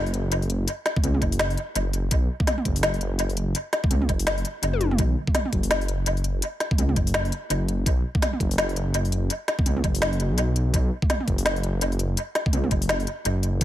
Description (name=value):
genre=half-time drum and bass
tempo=167 BPM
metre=4/4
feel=swing 60% on 16ths, half-time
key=unclear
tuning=A4 = 440 Hz
part: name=dark detuned saw bass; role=bass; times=0.0-13.6 s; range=F#1 to C#2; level=-24 LUFS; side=equal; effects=none
part: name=organic electronic drum kit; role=drums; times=0.1-13.6 s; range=hi-hat, snare drum, toms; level=-26 LUFS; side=equal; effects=overdrive, dub echo
part: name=electronic kick drum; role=drums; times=1.0-13.6 s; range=none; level=-24 LUFS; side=equal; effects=overdrive
room=little or no reverb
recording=echo-heavy mix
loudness=-22 LUFS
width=side -13 dB against mid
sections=0.0-13.6 A section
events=drum fill 4.7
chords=none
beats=0.32 | 0.68 1.03 1.40 1.75 | 2.11 2.47 2.83 3.19 | 3.55 3.91 4.27 4.63 | 4.99 5.35 5.71 6.07 | 6.42 6.78 7.14 7.50 | 7.86 8.22 8.58 8.94 | 9.30 9.66 10.02 10.38 | 10.74 11.10 11.46 11.81 | 12.17 12.53 12.89 13.25 | 13.61